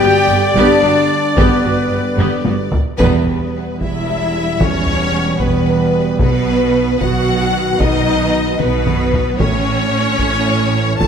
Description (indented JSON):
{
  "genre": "cinematic, epic orchestral film score",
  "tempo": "75 BPM (dotted quarters)",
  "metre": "6/8",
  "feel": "straight",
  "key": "E dorian",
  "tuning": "A4 = 442 Hz",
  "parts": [
    { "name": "rich symphonic violin section", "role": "melody", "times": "0.0-11.1 s", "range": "B4 to A5", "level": "-20 LUFS", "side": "left 4 dB", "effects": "none" },
    { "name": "hollow concert flute", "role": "second line", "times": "0.0-2.7 s", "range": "B4 to G5", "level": "-23 LUFS", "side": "left 2 dB", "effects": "none" },
    { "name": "rich symphonic violin section", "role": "second line", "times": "0.0-11.1 s", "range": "G3 to G5", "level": "-30 LUFS", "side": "equal", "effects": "none" },
    { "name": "warm symphonic viola section", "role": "accompaniment", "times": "0.0-11.1 s", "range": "B3 to A4", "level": "-21 LUFS", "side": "right 2 dB", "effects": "none" },
    { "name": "mellow French horn section", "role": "sustained chords", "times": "0.0-11.1 s", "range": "B3 to A4", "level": "-21 LUFS", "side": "left 3 dB", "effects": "none" },
    { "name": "warm trombone section", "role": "sustained chords", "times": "0.0-11.1 s", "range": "D3 to B3", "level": "-25 LUFS", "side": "right 5 dB", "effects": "none" },
    { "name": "mellow trumpet", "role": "stabs", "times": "0.0-2.7 s", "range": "D5", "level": "-19 LUFS", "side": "left 2 dB", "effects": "none" },
    { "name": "rich symphonic cello section", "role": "bass", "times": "0.0-11.1 s", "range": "E2 to B2", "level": "-21 LUFS", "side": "right 2 dB", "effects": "none" },
    { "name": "warm symphonic double bass section", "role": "bass", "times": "0.0-11.1 s", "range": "E1 to B1", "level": "-22 LUFS", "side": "right 4 dB", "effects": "none" },
    { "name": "taiko ensemble", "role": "drums", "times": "0.6-11.1 s", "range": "none", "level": "-18 LUFS", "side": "equal", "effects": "none" },
    { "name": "timpani", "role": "percussion", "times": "6.2-7.0 s", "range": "B2", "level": "-23 LUFS", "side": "equal", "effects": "none" }
  ],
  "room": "moderate scoring stage reverb, RT60 1.6 s",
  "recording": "none",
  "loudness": "-13 LUFS",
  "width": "side -7 dB against mid",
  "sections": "0.0-3.0 A section; 3.0-11.1 B section",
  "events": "drum fill 2.2-3.0, 8.6-9.4; band accent 3.0-3.5",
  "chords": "0.0 G; 3.0 Em; 6.2 B; 9.4 A"
}